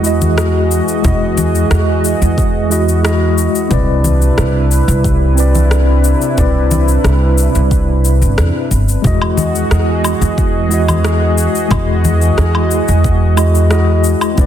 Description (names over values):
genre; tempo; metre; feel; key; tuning
sunset chillout; 90 BPM; 4/4; straight; E major; A4 = 443 Hz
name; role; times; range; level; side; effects
mellow tine electric piano; accompaniment; 0.0-14.5 s; G#3 to D#5; -17 LUFS; moving between left 6 dB and right 8 dB; fast stereo tremolo, auto-pan, digital delay
lush unison pad; sustained chords; 0.0-14.5 s; C3 to D#5; -19 LUFS; equal; chorus
upright bass; bass; 0.0-14.5 s; G1 to E2; -13 LUFS; equal; none
electronic cabasa, rim click and woodblock; drums; 0.0-14.5 s; none; -22 LUFS; left 2 dB; overdrive
congas; percussion; 0.2-14.5 s; none; -19 LUFS; left 2 dB; none
electronic kick drum; drums; 1.0-14.5 s; none; -17 LUFS; equal; overdrive
room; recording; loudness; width
light reverb, digital ambience; dense, heavily limited modern master; -10 LUFS; side -10 dB against mid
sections
0.0-14.5 A section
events
none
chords
0.0 Emaj9; 3.7 Cmaj9; 9.0 Emaj9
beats
0.38 | 1.04 1.71 2.38 3.04 | 3.71 4.38 5.04 5.71 | 6.38 7.04 7.71 8.38 | 9.04 9.71 10.38 11.04 | 11.71 12.38 13.04 13.71 | 14.38